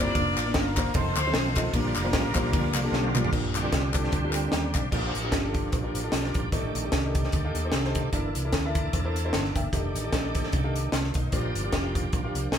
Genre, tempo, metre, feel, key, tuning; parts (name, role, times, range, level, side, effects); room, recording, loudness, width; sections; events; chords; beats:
uptempo gospel; 150 BPM; 4/4; swing 56% on 8ths; Bb major; A4 = 445 Hz
mellow horn section; melody; 0.0-2.9 s; Bb3 to D5; -31 LUFS; left 1 dB
warm concert grand piano; accompaniment; 0.0-12.6 s; G2 to D6; -32 LUFS; left 2 dB
bright tonewheel organ; sustained chords; 0.0-12.6 s; D3 to F5; -33 LUFS; right 3 dB; slow rotary speaker, chorus vibrato
vintage muted fingered electric bass; bass; 0.0-12.6 s; F1 to E2; -30 LUFS; equal
crisp fusion drum kit; drums; 0.2-12.6 s; crash cymbal, hi-hat, kick drum, ride cymbal, snare drum, toms; -28 LUFS; equal
group handclap; percussion; 0.4-4.8 s; -34 LUFS; left 5 dB
moderate stone room reverb, RT60 1.0 s; band playing live in one room; -24 LUFS; side -8 dB against mid
0.0-3.3 A section; 3.3-4.9 B section; 4.9-12.6 C section
drum fill 2.9-3.3; tonewheel organ solo 3.3-4.9; tonewheel organ fill 7.5-8.1
0.1 Bb/F; 0.9 F7; 1.7 Bb6; 6.5 F13/A; 8.1 C13/G; 9.7 F13; 11.3 Bb6
| 0.15 0.55 0.94 1.34 | 1.74 2.13 2.53 2.93 | 3.33 3.73 4.13 4.53 | 4.92 5.33 5.72 6.12 | 6.52 6.92 7.33 7.72 | 8.12 8.53 8.93 9.33 | 9.73 10.13 10.53 10.93 | 11.33 11.73 12.13 12.53